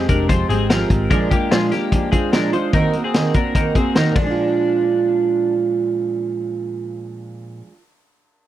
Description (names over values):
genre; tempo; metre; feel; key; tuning
jangly indie pop; 147 BPM; 4/4; straight; Bb mixolydian; A4 = 440 Hz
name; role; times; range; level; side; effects
fingerpicked steel-string acoustic guitar; accompaniment; 0.0-7.8 s; Bb2 to G4; -19 LUFS; right 4 dB; none
twelve-string electric guitar; arpeggios; 0.0-5.5 s; Ab3 to C5; -23 LUFS; left 6 dB; lush chorus, tape echo
vintage muted picked electric bass; bass; 0.0-1.1 s; F1 to Ab1; -22 LUFS; left 1 dB; none
vintage drum kit; drums; 0.1-4.3 s; hi-hat, kick drum, ride cymbal, snare drum; -19 LUFS; left 1 dB; none
room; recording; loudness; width
little or no reverb; dry, close 1970s-style studio recording; -16 LUFS; side -12 dB against mid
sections
0.0-4.4 A section; 4.4-7.6 B section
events
none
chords
0.0 Fmadd9; 1.1 Bb7; 2.7 Ebm6; 4.2 Bb7